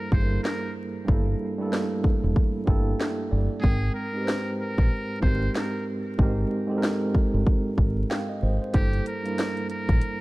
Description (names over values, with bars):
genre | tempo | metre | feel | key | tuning
hip hop, boom-bap hip-hop | 94 BPM | 4/4 | swing 60% on 16ths | G dorian | A4 = 436 Hz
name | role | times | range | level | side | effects
trumpet with metal mute | melody | 0.0-10.2 s | G4 to C5 | -34 LUFS | equal | high-pass filter, low-pass filter, tape echo
tine electric piano | accompaniment | 0.0-10.2 s | G2 to G5 | -28 LUFS | right 2 dB | medium tremolo, cassette tape, high-pass filter, low-pass filter
deep dub fingered electric bass | bass | 0.1-10.0 s | E1 to Bb1 | -25 LUFS | equal | none
house drum kit | drums | 0.1-10.2 s | hi-hat, kick drum, snare drum | -24 LUFS | equal | none
room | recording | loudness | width
little or no reverb | dark, warm production, vinyl crackle | -23 LUFS | side -20 dB against mid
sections
0.0-10.2 A section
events
break 0.0-8.7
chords
0.0 Gm69; 3.6 Abmaj7; 8.7 Gm69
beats
0.45 | 1.08 1.72 2.36 3.00 | 3.64 4.27 4.91 5.55 | 6.19 6.83 7.47 8.10 | 8.74 9.38 10.02